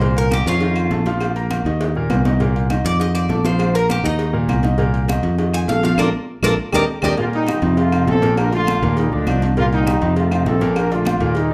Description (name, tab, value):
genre	latin, salsa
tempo	201 BPM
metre	4/4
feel	straight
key	Bb major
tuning	A4 = 439 Hz
part	Cuban tres	melody	0.0-7.1 s	Db4 to Ab5	-24 LUFS	equal	none
part	clear concert grand piano	accompaniment	0.0-11.5 s	Bb2 to Bb5	-25 LUFS	equal	none
part	fingered electric bass	bass	0.0-11.5 s	Bb1 to F2	-22 LUFS	equal	none
part	agogo bells and timbales	percussion	0.0-11.5 s	none	-31 LUFS	equal	none
part	congas	percussion	0.0-11.5 s	none	-29 LUFS	equal	none
part	cowbell and bongos	percussion	0.0-11.5 s	none	-32 LUFS	equal	none
part	claves	percussion	0.3-11.2 s	none	-36 LUFS	equal	none
part	bright trombone section	melody	7.2-11.5 s	F3 to Bb4	-23 LUFS	equal	none
room	moderate large studio reverb, RT60 0.9 s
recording	band playing live in one room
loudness	-18 LUFS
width	mono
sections	0.0-7.2 A section; 7.2-11.5 B section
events	Cuban tres solo 0.0-7.2; drum fill 1.8-2.4, 6.0-7.2; band accent 6.0-7.2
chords	0.0 Cm7; 0.6 F7; 1.2 Bb5; 1.8 Eb5; 2.4 Cm7; 3.0 F7; 3.6 Bb5; 4.2 Eb5; 4.8 Cm7; 5.4 F7; 6.0 Bbmaj7; 6.6 Ebmaj7; 7.2 Cm7; 7.8 F7; 8.4 Bbmaj7; 9.0 Ebmaj7; 9.6 Cm7; 10.2 F7; 10.8 Bbmaj7